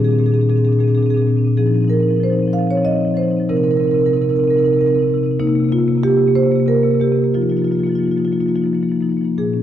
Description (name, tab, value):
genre	classical, contemporary piece for solo marimba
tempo	88-96 BPM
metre	3/4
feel	rubato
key	F minor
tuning	A4 = 440 Hz
part	marimba with soft mallets	solo	0.0-9.6 s	Bb2 to F5	-14 LUFS	equal	none
room	wet scoring stage reverb, RT60 1.5 s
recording	dark, warm production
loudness	-14 LUFS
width	side -11 dB against mid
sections	0.0-9.4 A section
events	none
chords	0.0 Bb9; 1.6 F5; 3.5 Cm7; 7.3 F7sus4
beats	0.26 0.93 | 1.58 2.23 2.87 | 3.50 4.14 4.77 | 5.40 6.03 6.67 | 7.34 8.02 8.70 | 9.37